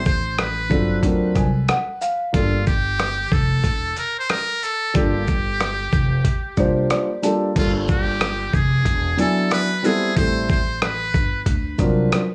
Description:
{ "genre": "hip hop, jazz-hop", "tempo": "92 BPM", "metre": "4/4", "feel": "swing 62% on 16ths", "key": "G dorian", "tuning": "A4 = 440 Hz", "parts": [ { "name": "trumpet with metal mute", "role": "melody", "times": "0.0-11.4 s", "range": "F4 to C5", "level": "-27 LUFS", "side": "equal", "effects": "tape echo" }, { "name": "upright bass", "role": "bass", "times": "0.0-12.1 s", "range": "E1 to D2", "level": "-26 LUFS", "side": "equal", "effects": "none" }, { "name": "dusty soul sampler-style drum kit", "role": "drums", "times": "0.1-12.3 s", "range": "crash cymbal, hi-hat, kick drum, rim click, shaker", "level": "-24 LUFS", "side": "equal", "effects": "none" }, { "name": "dark concert grand piano", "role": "accompaniment", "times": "0.7-12.2 s", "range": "F#3 to A5", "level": "-23 LUFS", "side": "equal", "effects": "none" } ], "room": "moderate small room reverb, RT60 0.5 s", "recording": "studio reverb", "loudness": "-20 LUFS", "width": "mono", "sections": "0.0-7.6 A section; 7.6-12.3 A section", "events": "grand piano fill 1.0-2.3, 6.6-7.6", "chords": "0.0 Am9; 1.0 D7alt; 2.3 Gm9; 8.9 E7; 10.2 Am9; 11.5 D7alt" }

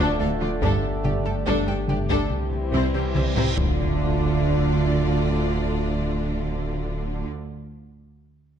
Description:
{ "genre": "cinematic, hybrid orchestral and electronic film score", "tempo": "71 BPM", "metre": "4/4", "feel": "straight", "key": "D minor", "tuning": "A4 = 440 Hz", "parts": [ { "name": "rich symphonic violin section", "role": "melody", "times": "0.0-7.3 s", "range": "A4 to G5", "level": "-34 LUFS", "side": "left 5 dB", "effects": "none" }, { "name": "clear studio violin section", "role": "second line", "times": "0.0-7.2 s", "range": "C4 to A4", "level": "-34 LUFS", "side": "left 4 dB", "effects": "none" }, { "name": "rich symphonic viola section", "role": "accompaniment", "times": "0.0-7.3 s", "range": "D4 to E4", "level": "-34 LUFS", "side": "equal", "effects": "none" }, { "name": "bright trombone section", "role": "sustained chords", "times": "0.0-7.3 s", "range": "D3 to A3", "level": "-34 LUFS", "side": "right 3 dB", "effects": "none" }, { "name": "mellow French horn section", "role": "sustained chords", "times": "0.0-7.3 s", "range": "C4 to G4", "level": "-34 LUFS", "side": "left 5 dB", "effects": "none" }, { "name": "warm analog pad", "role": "sustained chords", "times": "0.0-7.3 s", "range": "G3 to D5", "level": "-32 LUFS", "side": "left 1 dB", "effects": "chorus" }, { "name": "analog pluck", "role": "arpeggios", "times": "0.0-3.5 s", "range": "C3 to A4", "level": "-35 LUFS", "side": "left 3 dB", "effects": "none" }, { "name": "rich symphonic cello section", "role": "bass", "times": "0.0-7.2 s", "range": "D2 to D3", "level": "-30 LUFS", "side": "right 3 dB", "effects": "none" }, { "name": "saturated sub bass", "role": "bass", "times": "0.0-7.2 s", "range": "D1 to C2", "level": "-30 LUFS", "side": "left 1 dB", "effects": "none" }, { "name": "clear symphonic double bass section", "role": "bass", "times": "0.2-7.3 s", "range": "G1 to D2", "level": "-29 LUFS", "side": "right 4 dB", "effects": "none" }, { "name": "mellow tuba", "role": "bass", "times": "0.2-7.3 s", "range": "G1 to D2", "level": "-30 LUFS", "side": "right 3 dB", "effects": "none" }, { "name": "taiko ensemble", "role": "drums", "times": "0.6-5.2 s", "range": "none", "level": "-28 LUFS", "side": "left 1 dB", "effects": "none" }, { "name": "reverse cymbal and impact", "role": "sound effects", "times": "2.8-7.3 s", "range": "none", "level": "-34 LUFS", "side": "equal", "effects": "none" } ], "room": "moderate scoring stage reverb, RT60 1.5 s", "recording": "dark, warm production", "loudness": "-21 LUFS", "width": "side -8 dB against mid", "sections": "0.0-4.0 A section; 4.0-7.4 B section", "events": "reverse cymbal 2.8-4.0; drum fill 3.2-4.0; impact 4.0-7.4", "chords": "0.0 Dm; 0.6 Gsus2; 2.3 C; 3.6 Dm" }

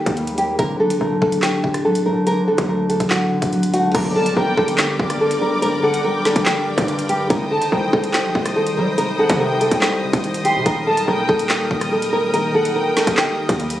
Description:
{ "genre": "hip hop, drill", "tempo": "143 BPM", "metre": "4/4", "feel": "half-time", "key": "G harmonic minor", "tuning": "A4 = 440 Hz", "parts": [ { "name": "nylon-string guitar", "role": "melody", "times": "0.0-13.8 s", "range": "F#4 to Bb4", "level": "-20 LUFS", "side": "equal", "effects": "tape echo" }, { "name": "concert harp", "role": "accompaniment", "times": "0.0-13.8 s", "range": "G2 to Eb4", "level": "-23 LUFS", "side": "equal", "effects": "none" }, { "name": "hard-hitting 808-style bass", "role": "bass", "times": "0.1-13.8 s", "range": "C1 to G3", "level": "-25 LUFS", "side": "equal", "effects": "none" }, { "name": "drill drum kit", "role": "drums", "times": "0.1-13.8 s", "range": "crash cymbal, handclaps, hi-hat, kick drum, rim click, snare drum", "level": "-22 LUFS", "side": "equal", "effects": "none" }, { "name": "clear symphonic string section", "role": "sustained chords", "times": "3.9-13.8 s", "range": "Bb4 to Eb6", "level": "-26 LUFS", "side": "equal", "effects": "none" }, { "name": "impact", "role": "sound effects", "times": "3.9-5.6 s", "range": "none", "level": "-32 LUFS", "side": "equal", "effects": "none" }, { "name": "dark studio violin section", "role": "second line", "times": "4.2-13.2 s", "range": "F#5 to C6", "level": "-26 LUFS", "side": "equal", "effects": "tape echo" } ], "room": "small room ambience", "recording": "recorded on a phone in the room, studio reverb, compression", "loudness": "-16 LUFS", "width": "side -13 dB against mid", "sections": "0.0-3.9 A section; 3.9-13.8 B section", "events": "impact 3.9-5.6", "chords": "0.0 Eb; 0.6 D; 3.9 Gm; 7.3 Cm; 10.7 Eb" }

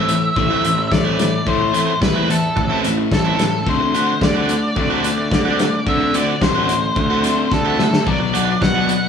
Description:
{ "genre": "indie rock", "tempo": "109 BPM", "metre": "4/4", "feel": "straight", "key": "unclear", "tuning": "A4 = 439 Hz", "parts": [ { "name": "octave-fuzz lead guitar", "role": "melody", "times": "0.0-9.1 s", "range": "A4 to F#5", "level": "-21 LUFS", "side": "left 1 dB", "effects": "distortion" }, { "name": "biting overdriven guitar", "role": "riff", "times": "0.0-8.9 s", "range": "D3 to F#4", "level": "-23 LUFS", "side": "right 6 dB", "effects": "none" }, { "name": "overdriven electric guitar", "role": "riff", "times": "0.0-9.1 s", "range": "A2 to C4", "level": "-21 LUFS", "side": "left 5 dB", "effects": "none" }, { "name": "fuzz picked electric bass", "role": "bass", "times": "0.0-9.1 s", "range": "A1 to D3", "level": "-23 LUFS", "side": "right 1 dB", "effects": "overdrive" }, { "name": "loose indie drum kit", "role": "drums", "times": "0.1-9.0 s", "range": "hi-hat, kick drum, snare drum", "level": "-21 LUFS", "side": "left 1 dB", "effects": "none" } ], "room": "moderate stone room reverb, RT60 1.1 s", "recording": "band playing live in one room, studio ambience", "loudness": "-15 LUFS", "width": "side -7 dB against mid", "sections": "0.0-9.1 A section", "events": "drum fill 7.5-8.1", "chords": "0.0 Am; 3.7 D7; 8.1 Bm" }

